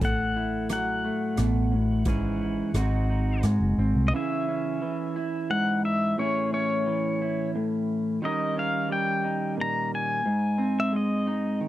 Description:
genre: acoustic folk-pop ballad.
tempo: 88 BPM.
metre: 3/4.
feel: straight.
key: C# harmonic minor from 4.1 s.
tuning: A4 = 440 Hz.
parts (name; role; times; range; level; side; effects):
pedal steel guitar; melody; 0.0-11.6 s; C#5 to A#5; -29 LUFS; left 2 dB; none.
electric guitar through a small old amp; accompaniment; 0.0-11.7 s; G#2 to A#4; -26 LUFS; right 1 dB; none.
vintage muted fingered electric bass; bass; 0.0-4.1 s; F#1 to G#2; -26 LUFS; equal; none.
loose indie drum kit; drums; 0.0-3.6 s; hi-hat, kick drum, rim click; -31 LUFS; equal; none.
room: little or no reverb.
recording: none.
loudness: -24 LUFS.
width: side -14 dB against mid.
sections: 0.0-4.1 A section; 4.1-11.7 B section.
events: none.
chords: 0.0 F#m7/A; 2.1 C#m/G#; 2.7 G#7; 4.1 C#m; 6.2 Amaj7; 8.2 D#7; 10.2 G#.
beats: | 0.01 0.69 1.38 | 2.06 2.75 3.44 | 4.13 4.81 5.50 | 6.18 6.86 7.53 | 8.21 8.89 9.57 | 10.24 10.92 11.61.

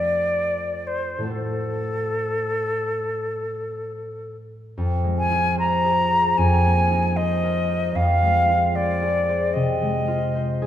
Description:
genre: classical, impressionist duo for flute and harp.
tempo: 68-78 BPM.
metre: 4/4.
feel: rubato.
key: A dorian, F dorian from 4.8 s.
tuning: A4 = 440 Hz.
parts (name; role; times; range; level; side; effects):
concert flute; melody; 0.0-10.7 s; A4 to Bb5; -22 LUFS; equal; none.
concert harp; accompaniment; 0.0-10.7 s; F2 to C5; -23 LUFS; equal; none.
room: wet recital hall reverb, RT60 1.8 s.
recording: none.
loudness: -20 LUFS.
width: side -11 dB against mid.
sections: 0.0-4.8 A section; 4.8-10.7 B section.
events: none.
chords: 0.0 F; 1.3 Am6; 4.8 Fm; 6.4 Abadd9/F; 7.9 Fm.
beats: 0.44 | 1.30 2.18 3.05 3.92 | 4.77 5.59 6.38 7.16 | 7.95 8.75 9.54 10.34.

